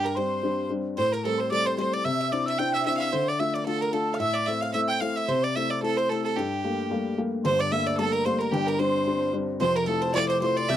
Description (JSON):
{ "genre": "celtic folk, Celtic reel", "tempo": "222 BPM", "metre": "4/4", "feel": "swing 56% on 8ths", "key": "G dorian", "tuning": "A4 = 440 Hz", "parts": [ { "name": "clear fiddle", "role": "melody", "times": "0.0-10.8 s", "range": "G4 to G5", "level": "-27 LUFS", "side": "right 3 dB", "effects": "none" }, { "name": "Irish bouzouki", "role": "second line", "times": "0.0-10.8 s", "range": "G4 to G5", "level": "-33 LUFS", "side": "right 4 dB", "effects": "none" }, { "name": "wooden flute", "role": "second line", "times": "0.0-10.8 s", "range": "G5 to G6", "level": "-32 LUFS", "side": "left 4 dB", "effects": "none" }, { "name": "dark upright piano", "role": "accompaniment", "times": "0.0-10.8 s", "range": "F1 to F4", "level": "-27 LUFS", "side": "left 3 dB", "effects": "none" } ], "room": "light reverb", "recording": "dry, close 1970s-style studio recording", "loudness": "-23 LUFS", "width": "side -11 dB against mid", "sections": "0.0-7.5 A section; 7.5-10.8 A section", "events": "none", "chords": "0.0 Csus2/G; 1.0 Am7; 2.1 Cadd9; 3.1 Dm; 4.2 Am; 5.3 C6; 6.4 Gmadd9; 8.5 Csus2/G; 9.6 Fmaj7" }